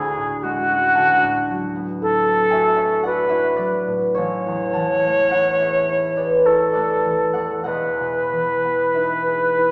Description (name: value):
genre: classical, impressionist duo for flute and harp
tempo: 47-58 BPM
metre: 3/4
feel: rubato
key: unclear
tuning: A4 = 440 Hz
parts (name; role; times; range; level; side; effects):
- silver concert flute; melody; 0.0-9.7 s; F#4 to C#5; -21 LUFS; equal; none
- concert harp; accompaniment; 0.0-9.7 s; E1 to B5; -25 LUFS; equal; none
room: wet recital hall reverb, RT60 1.5 s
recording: recorded in a church or concert hall, small speaker sound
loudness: -19 LUFS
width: mono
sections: 0.0-9.7 A section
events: none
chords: 0.0 Amaj7/D; 1.0 D69; 4.2 Amaj7; 7.7 Emaj7